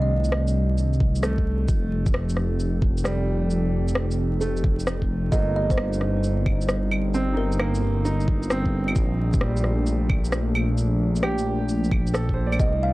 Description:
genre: future garage.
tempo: 132 BPM.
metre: 4/4.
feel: swing 67% on 16ths.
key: unclear.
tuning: A4 = 439 Hz.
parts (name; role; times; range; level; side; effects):
kalimba; melody; 0.0-0.1, 5.3-7.7, 12.6-12.9 s; Bb4 to F5; -31 LUFS; right 2 dB; tape echo.
bright upright piano; accompaniment; 0.0-12.9 s; G3 to D5; -31 LUFS; right 2 dB; sidechain pumping, analog delay.
warbly tape-like pad; sustained chords; 0.0-12.9 s; C3 to A4; -30 LUFS; left 1 dB; chorus, built-in reverb, sidechain pumping.
dark detuned saw bass; bass; 0.0-12.9 s; F1 to C2; -24 LUFS; equal; none.
electronic shaker, rim click and claves; drums; 0.2-12.7 s; none; -29 LUFS; equal; vintage 12-bit sampler grit.
electronic kick drum; drums; 1.0-12.7 s; none; -22 LUFS; equal; vintage 12-bit sampler grit.
room: digital ambience.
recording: dry, gritty hardware recording, transformer saturation, vinyl crackle.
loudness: -21 LUFS.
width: side -19 dB against mid.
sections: 0.0-12.6 A section.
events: none.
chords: 0.0 Cm69; 1.7 F9; 5.3 Eb6/G; 9.0 Bbmaj9.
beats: 0.32 0.78 1.23 | 1.69 2.14 2.59 3.05 | 3.50 3.96 4.41 4.87 | 5.32 5.78 6.23 6.68 | 7.14 7.59 8.05 8.50 | 8.96 9.41 9.87 10.32 | 10.78 11.23 11.69 12.14 | 12.59.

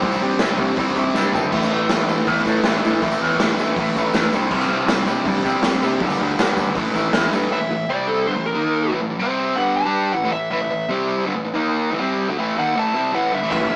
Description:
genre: garage rock duo or trio.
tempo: 160 BPM.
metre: 4/4.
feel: straight.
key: unclear.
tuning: A4 = 440 Hz.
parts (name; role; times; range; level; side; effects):
fuzz guitar; riff; 0.0-13.8 s; G2 to G4; -22 LUFS; equal; distortion.
growling picked electric bass; bass; 0.0-7.5, 13.5-13.8 s; G1 to C3; -27 LUFS; equal; overdrive.
raw garage drum kit; drums; 0.0-7.2, 13.5-13.6 s; crash cymbal, hi-hat, kick drum, snare drum, toms; -24 LUFS; equal; none.
tambourine; percussion; 0.0-7.5 s; none; -44 LUFS; equal; none.
fuzz lead guitar; melody; 7.5-13.8 s; A4 to A5; -24 LUFS; equal; distortion.
room: moderate studio reverb, RT60 0.6 s.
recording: band playing live in one room, small speaker sound.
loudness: -20 LUFS.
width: mono.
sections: 0.0-7.5 A section; 7.5-13.8 B section.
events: drum fill 1.1-1.5.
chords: 0.0 C5; 1.5 A5; 4.3 C5; 6.0 G5; 6.8 A5; 7.9 C5; 8.3 A5; 8.5 D#5; 8.9 A5; 9.2 C5; 9.6 A5; 10.9 C5; 11.3 A5; 11.5 D#5; 11.9 A5.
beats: | 0.02 0.40 0.77 1.15 | 1.52 1.90 2.27 2.65 | 3.02 3.40 3.77 4.14 | 4.52 4.89 5.26 5.64 | 6.01 6.38 6.75 7.13 | 7.50 7.88 8.25 8.63 | 9.00 9.38 9.75 10.13 | 10.50 10.88 11.25 11.63 | 12.01 12.38 12.76 13.13 | 13.51.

